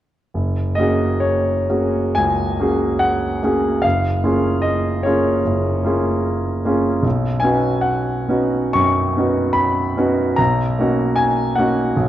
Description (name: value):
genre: classical, impressionist solo piano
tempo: 61-78 BPM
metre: 4/4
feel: rubato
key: F# major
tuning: A4 = 440 Hz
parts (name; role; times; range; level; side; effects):
- clear grand piano; solo; 0.3-12.1 s; F#1 to C#6; -16 LUFS; equal; none
room: moderate scoring stage reverb, RT60 1.6 s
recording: worn, warbling old tape, cassette tape, warbly pitch drift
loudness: -16 LUFS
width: side -12 dB against mid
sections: 0.4-12.1 A section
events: none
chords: 0.4 F#add9; 3.8 A#m7/F#; 7.0 Badd9; 10.4 D#m7/B